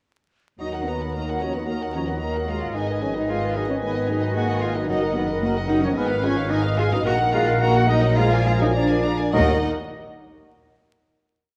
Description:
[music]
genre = quick classical-period movement for symphony orchestra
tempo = 102-113 BPM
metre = 4/4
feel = straight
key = Eb minor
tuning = A4 = 440 Hz
[part]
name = rich chamber violin section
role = melody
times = 0.6-9.7 s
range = Eb5 to Bb5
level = -35 LUFS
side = equal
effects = none
[part]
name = clear clarinet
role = second line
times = 0.6-9.6 s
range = Bb4 to Cb5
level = -35 LUFS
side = equal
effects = none
[part]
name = hollow concert flute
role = second line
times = 0.6-9.7 s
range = Bb4 to Gb5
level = -34 LUFS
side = equal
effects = none
[part]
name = rich chamber violin section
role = second line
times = 0.6-9.7 s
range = D5 to Ab5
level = -39 LUFS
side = equal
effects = none
[part]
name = warm oboe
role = second line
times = 0.6-9.6 s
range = Eb5 to Bb5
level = -38 LUFS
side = equal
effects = none
[part]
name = dark studio viola section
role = accompaniment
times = 0.6-9.7 s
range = Gb4 to Cb5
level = -35 LUFS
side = equal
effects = none
[part]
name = mellow bassoon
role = accompaniment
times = 0.6-9.6 s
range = Eb3 to Gb3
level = -34 LUFS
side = equal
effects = none
[part]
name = dark French horn section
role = sustained chords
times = 0.6-9.6 s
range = Eb3 to Eb4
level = -32 LUFS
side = equal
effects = none
[part]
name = dark trumpet section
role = stabs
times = 0.6-9.6 s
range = Bb4 to Gb5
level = -32 LUFS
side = equal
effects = none
[part]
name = rich chamber double bass section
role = bass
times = 0.6-9.7 s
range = Gb1 to Eb2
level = -27 LUFS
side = equal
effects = none
[part]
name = warm chamber cello section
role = bass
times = 0.6-9.7 s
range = Bb3 to Gb4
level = -29 LUFS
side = equal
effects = none
[sound]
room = moderate scoring stage reverb, RT60 1.8 s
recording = worn, warbling old tape, cassette tape, vinyl crackle, warbly pitch drift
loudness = -22 LUFS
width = mono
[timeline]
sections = 0.6-9.3 A section; 9.3-11.6 final chord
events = slowing down 3.8-9.3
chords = 0.6 Ebm; 2.8 Abm; 4.9 Ebm/Gb; 6.0 Fm7b5/Ab; 7.1 Ebm/Bb; 8.2 Bb7; 9.3 Eb5

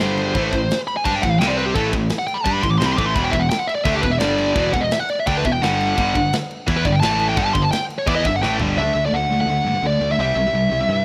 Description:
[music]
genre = heavy metal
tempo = 171 BPM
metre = 4/4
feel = straight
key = unclear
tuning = A4 = 438 Hz
[part]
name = high-gain lead guitar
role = melody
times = 0.0-11.0 s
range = G4 to D6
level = -23 LUFS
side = equal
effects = distortion, digital delay
[part]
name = high-gain distorted guitar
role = riff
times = 0.0-11.0 s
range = E2 to G4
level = -27 LUFS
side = equal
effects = distortion
[part]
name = tight distorted guitar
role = riff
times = 0.0-8.8 s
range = E2 to G4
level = -25 LUFS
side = equal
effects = distortion
[part]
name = fuzz picked electric bass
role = bass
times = 0.0-11.0 s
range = E1 to G2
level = -27 LUFS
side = equal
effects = overdrive
[part]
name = tight metal drum kit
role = drums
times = 0.0-8.7 s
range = crash cymbal, kick drum, snare drum, toms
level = -28 LUFS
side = equal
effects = none
[sound]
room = light reverb, studio ambience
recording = rough home demo mix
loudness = -19 LUFS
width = mono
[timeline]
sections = 0.0-8.8 A section; 8.8-11.0 B section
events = lead electric guitar solo 0.0-8.8; drum fill 8.4-8.8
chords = 0.0 G5; 0.4 A5; 1.4 C5; 1.8 A5; 3.2 E5; 4.2 G5; 4.6 E5; 5.6 G5; 7.0 A5; 7.4 G5; 8.8 D; 10.2 C

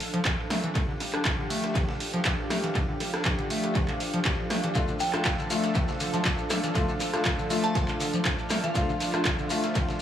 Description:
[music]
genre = acid house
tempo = 120 BPM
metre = 4/4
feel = straight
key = D minor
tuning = A4 = 440 Hz
[part]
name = warm analog pad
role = sustained chords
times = 0.0-10.0 s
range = F3 to A4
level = -34 LUFS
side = right 1 dB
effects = chorus, sidechain pumping
[part]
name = dusty soul sampler-style drum kit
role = drums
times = 0.0-10.0 s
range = hi-hat, ride cymbal, snare drum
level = -41 LUFS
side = right 2 dB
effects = none
[part]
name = punchy analog drum machine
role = drums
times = 0.0-9.9 s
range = handclaps, hi-hat, rim click, snare drum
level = -31 LUFS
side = right 1 dB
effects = tape echo
[part]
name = granular cloud pad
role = texture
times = 0.0-10.0 s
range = D4 to F5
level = -36 LUFS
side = right 1 dB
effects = built-in reverb, sidechain pumping
[part]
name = overdriven acid bass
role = riff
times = 0.1-9.9 s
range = D3 to D4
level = -32 LUFS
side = left 1 dB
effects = lush chorus, sidechain pumping, tape echo
[part]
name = electronic kick drum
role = drums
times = 0.3-9.9 s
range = none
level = -29 LUFS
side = equal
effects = none
[part]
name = warm grand piano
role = stabs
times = 4.8-9.6 s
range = A3 to F4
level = -34 LUFS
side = left 3 dB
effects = tape echo
[part]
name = shekere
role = percussion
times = 4.8-10.0 s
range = none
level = -38 LUFS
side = left 5 dB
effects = tape echo
[part]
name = glassy synth bell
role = melody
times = 5.0-9.0 s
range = F5 to A5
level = -35 LUFS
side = right 2 dB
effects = chorus, phaser, dub echo
[sound]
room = moderate spring reverb, RT60 1.6 s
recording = echo-heavy mix, small room ambience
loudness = -24 LUFS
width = side -10 dB against mid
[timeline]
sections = 0.0-10.0 A section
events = none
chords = 0.0 Dm

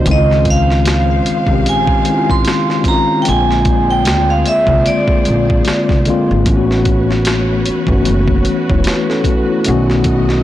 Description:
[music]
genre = R&B, neo-soul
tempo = 75 BPM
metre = 4/4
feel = swing 57% on 16ths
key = unclear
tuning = A4 = 439 Hz
[part]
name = mellow tine electric piano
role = accompaniment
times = 0.0-10.4 s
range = C#3 to C#5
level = -15 LUFS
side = left 2 dB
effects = medium stereo tremolo
[part]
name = warm studio string section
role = sustained chords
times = 0.0-10.4 s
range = C#3 to E#5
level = -25 LUFS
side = equal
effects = none
[part]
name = upright bass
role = bass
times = 0.0-10.4 s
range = E1 to D2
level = -16 LUFS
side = equal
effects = none
[part]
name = vibraphone with hard mallets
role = melody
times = 0.1-6.0 s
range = D5 to B#5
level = -16 LUFS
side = right 3 dB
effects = none
[part]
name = boom bap sampler-style drum kit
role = drums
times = 0.1-10.4 s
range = hi-hat, kick drum, snare drum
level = -17 LUFS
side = equal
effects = none
[sound]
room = light reverb, small room ambience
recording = blown-out, overdriven recording, overdrive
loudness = -11 LUFS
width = side -13 dB against mid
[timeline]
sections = 0.0-10.4 A section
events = none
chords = 0.1 C#maj7; 3.3 A#9; 6.5 A69; 9.7 B7

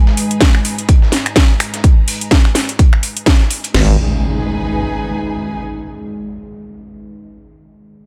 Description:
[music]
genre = bass house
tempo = 126 BPM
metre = 4/4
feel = swing 57% on 16ths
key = G# minor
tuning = A4 = 442 Hz
[part]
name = deep dark ambient pad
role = sustained chords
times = 0.0-4.0 s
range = G#3 to D#5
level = -26 LUFS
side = equal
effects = chorus, built-in reverb, sidechain pumping
[part]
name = rich studio string section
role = texture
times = 0.0-5.6 s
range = D#4 to A#5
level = -32 LUFS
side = equal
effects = sidechain pumping
[part]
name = dusty soul sampler-style drum kit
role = drums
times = 0.1-3.7 s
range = hi-hat, snare drum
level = -28 LUFS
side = equal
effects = overdrive, sidechain pumping on hats, high-pass filter on hats, high-pass filter on snare, high-pass filter on room
[part]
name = house drum kit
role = drums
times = 0.2-3.7 s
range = finger snaps, hi-hat, snare drum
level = -18 LUFS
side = equal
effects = none
[part]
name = house drum kit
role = drums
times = 0.4-3.9 s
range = crash cymbal, kick drum, snare drum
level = -13 LUFS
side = equal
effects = none
[part]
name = growling FM bass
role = bass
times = 3.7-4.0 s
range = G#1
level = -14 LUFS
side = equal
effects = tube saturation, sidechain pumping
[part]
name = impact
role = sound effects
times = 3.7-5.6 s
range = none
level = -24 LUFS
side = equal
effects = none
[sound]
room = little or no reverb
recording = none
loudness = -14 LUFS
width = mono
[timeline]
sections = 0.0-3.7 A section; 3.7-5.6 B section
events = fade-out on string section 0.0-3.7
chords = 0.0 G#m

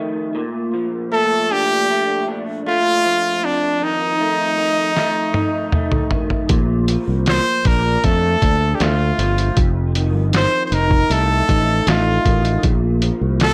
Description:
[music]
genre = indie pop, bedroom pop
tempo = 78 BPM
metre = 4/4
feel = straight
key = Bb major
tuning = A4 = 441 Hz
[part]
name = electric guitar through a small old amp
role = accompaniment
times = 0.0-13.5 s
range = F2 to Eb4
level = -25 LUFS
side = equal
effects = ensemble chorus, vibrato effect, plate reverb
[part]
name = brilliant trumpet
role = melody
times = 1.1-13.5 s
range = D4 to C5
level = -20 LUFS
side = equal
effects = subtle chorus, slapback echo
[part]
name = lo-fi sampler-style drum kit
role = drums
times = 5.0-13.5 s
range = hi-hat, kick drum, snare drum, toms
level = -21 LUFS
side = equal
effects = none
[part]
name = fingered electric bass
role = bass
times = 6.5-13.5 s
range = F1 to F2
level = -21 LUFS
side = equal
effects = none
[sound]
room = light reverb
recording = none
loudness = -18 LUFS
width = mono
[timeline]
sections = 0.0-13.5 A section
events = drum fill 5.0-6.5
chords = 0.3 Bbmaj7; 3.4 F7; 6.5 Bbmaj7; 9.6 F7; 12.6 Bbmaj7(no3)

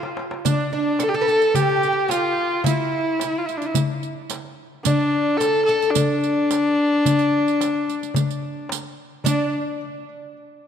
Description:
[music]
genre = Turkish makam ensemble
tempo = 109 BPM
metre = 4/4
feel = straight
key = D makam huseyni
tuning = A4 = 440 Hz
[part]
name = rich kamancheh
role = melody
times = 0.0-9.5 s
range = D4 to A4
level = -21 LUFS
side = left 1 dB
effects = ping-pong delay
[part]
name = oud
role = second line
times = 0.0-9.5 s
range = D4 to B4-30c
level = -26 LUFS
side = right 2 dB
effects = ping-pong delay
[part]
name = darbuka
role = percussion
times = 0.0-9.5 s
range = none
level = -26 LUFS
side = left 3 dB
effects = none
[part]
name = riq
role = percussion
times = 0.5-9.5 s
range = none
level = -29 LUFS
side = right 13 dB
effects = none
[sound]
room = wet plate reverb, RT60 2.9 s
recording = dreamy mix soaked in reverb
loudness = -18 LUFS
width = side -8 dB against mid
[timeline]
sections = 0.0-9.3 A section; 9.3-10.7 B section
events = drum fill 0.0-0.5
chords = none

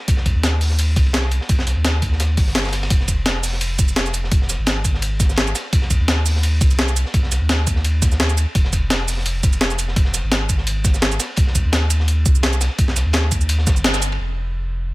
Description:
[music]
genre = liquid drum and bass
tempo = 170 BPM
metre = 4/4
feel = swing 54% on 16ths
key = unclear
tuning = A4 = 435 Hz
[part]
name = warm sub bass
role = bass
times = 0.1-14.9 s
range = F1 to Eb2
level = -20 LUFS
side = equal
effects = none
[part]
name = breakbeat sampler-style drum kit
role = drums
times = 0.1-14.1 s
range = hi-hat, shaker, snare drum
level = -21 LUFS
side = equal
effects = none
[part]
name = crunchy breakbeat drum kit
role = drums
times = 0.1-14.2 s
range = hi-hat, ride cymbal, snare drum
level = -28 LUFS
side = equal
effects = high-pass filter on cymbals, high-pass filter on hats, high-pass filter on snare, high-pass filter on room
[part]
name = electronic kick drum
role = drums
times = 0.1-13.7 s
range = none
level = -17 LUFS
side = equal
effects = none
[sound]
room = small room ambience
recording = none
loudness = -16 LUFS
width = side -20 dB against mid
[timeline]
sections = 0.0-14.2 A section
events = band accent 13.8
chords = none

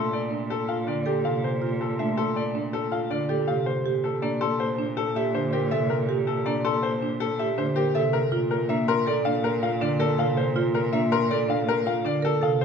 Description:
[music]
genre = classical, minimalist pattern music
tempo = 161 BPM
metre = 6/4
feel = straight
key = Bb lydian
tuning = A4 = 440 Hz
[part]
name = bright grand piano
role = melody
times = 0.0-12.6 s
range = G4 to F5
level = -27 LUFS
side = left 6 dB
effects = none
[part]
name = celesta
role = arpeggios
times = 0.0-11.4 s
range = C6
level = -32 LUFS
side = left 5 dB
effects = none
[part]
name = rich cello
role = bass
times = 0.0-12.6 s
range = Bb2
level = -31 LUFS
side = right 3 dB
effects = none
[part]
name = marimba with medium hard mallets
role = arpeggios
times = 0.3-12.6 s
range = D4 to Bb4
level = -28 LUFS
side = right 7 dB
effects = none
[part]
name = marimba with medium hard mallets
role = accompaniment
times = 0.9-12.6 s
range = C3 to Bb3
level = -30 LUFS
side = equal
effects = none
[sound]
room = wet scoring stage reverb, RT60 1.7 s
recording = minimal, uncompressed stereo recording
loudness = -22 LUFS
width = side -6 dB against mid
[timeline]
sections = 0.0-12.6 A section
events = none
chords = 0.0 Gm11/Bb; 3.9 C9/Bb; 8.3 Bbmaj9

